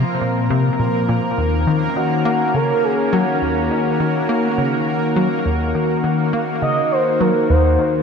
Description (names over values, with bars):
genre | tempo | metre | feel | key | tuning
ambient, sequencer-driven space music | 103 BPM | 4/4 | straight | Eb dorian | A4 = 440 Hz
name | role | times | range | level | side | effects
lush unison pad | sustained chords | 0.0-8.0 s | Eb3 to C5 | -20 LUFS | left 1 dB | chorus
tight sequenced synth | riff | 0.0-8.0 s | Eb2 to Bb3 | -20 LUFS | left 1 dB | chorus, phaser, ping-pong delay
bubbling stepped-filter texture | texture | 0.0-8.0 s | Bb3 to Bb4 | -27 LUFS | right 1 dB | chorus, built-in reverb
expressive synth lead | melody | 2.0-8.0 s | Gb4 to Eb5 | -22 LUFS | right 1 dB | chorus, ping-pong delay
room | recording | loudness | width
wet plate reverb, RT60 2.8 s | none | -15 LUFS | side -6 dB against mid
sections
0.0-8.0 A section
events
none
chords
0.0 Bbsus2; 1.4 Ebm7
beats
0.21 0.80 | 1.38 1.96 2.54 3.13 | 3.71 4.29 4.87 5.46 | 6.04 6.62 7.20 7.79